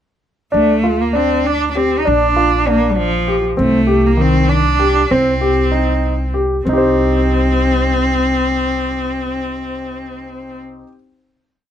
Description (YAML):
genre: contemporary instrumental, chamber music in an uneven meter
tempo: 195 BPM (eighths)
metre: 5/8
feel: straight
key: C dorian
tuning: A4 = 439 Hz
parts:
  - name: rich cello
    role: melody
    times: 0.5-10.5 s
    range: F3 to Eb4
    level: -17 LUFS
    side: equal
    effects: none
  - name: warm grand piano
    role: arpeggios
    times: 0.5-10.9 s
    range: Eb3 to C5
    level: -17 LUFS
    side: equal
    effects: none
  - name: upright bass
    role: bass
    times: 0.5-10.8 s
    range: Bb1 to D2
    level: -20 LUFS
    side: equal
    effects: none
room: light reverb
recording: none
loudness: -13 LUFS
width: side -10 dB against mid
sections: 0.5-6.7 A section; 6.7-9.8 final chord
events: none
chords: 0.5 Dm; 2.1 Bb; 3.6 Cm